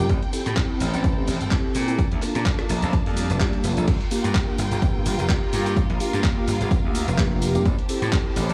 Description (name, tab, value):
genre	filtered disco house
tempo	127 BPM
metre	4/4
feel	swing 55% on 16ths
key	G dorian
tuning	A4 = 440 Hz
part	mellow tine electric piano	accompaniment	0.0-8.4 s	Bb3 to A4	-30 LUFS	equal	phaser, sidechain pumping, low-pass filter
part	clear studio violin section	sustained chords	0.0-8.5 s	Bb3 to A5	-34 LUFS	equal	sidechain pumping, low-pass filter
part	gritty slap bass	bass	0.0-8.5 s	F1 to Bb2	-27 LUFS	equal	overdrive, sidechain pumping, low-pass filter
part	tambourine	percussion	0.0-8.5 s	none	-44 LUFS	equal	none
part	dusty soul sampler-style drum kit	drums	0.1-8.5 s	cabasa, crash cymbal, handclaps, hi-hat, rim click	-34 LUFS	equal	sidechain pumping on hats, sidechain pumping on perc, sidechain pumping on cymbals
part	electronic kick drum	drums	0.1-8.2 s	none	-25 LUFS	equal	overdrive
part	swell	sound effects	3.1-3.9 s	none	-38 LUFS	equal	none
room	light reverb, digital ambience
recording	small room ambience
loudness	-22 LUFS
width	mono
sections	0.0-3.9 A section; 3.9-8.5 B section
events	drop 3.9-8.5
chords	0.1 Am7; 2.0 Bbmaj7; 3.9 Gm7; 7.7 Am7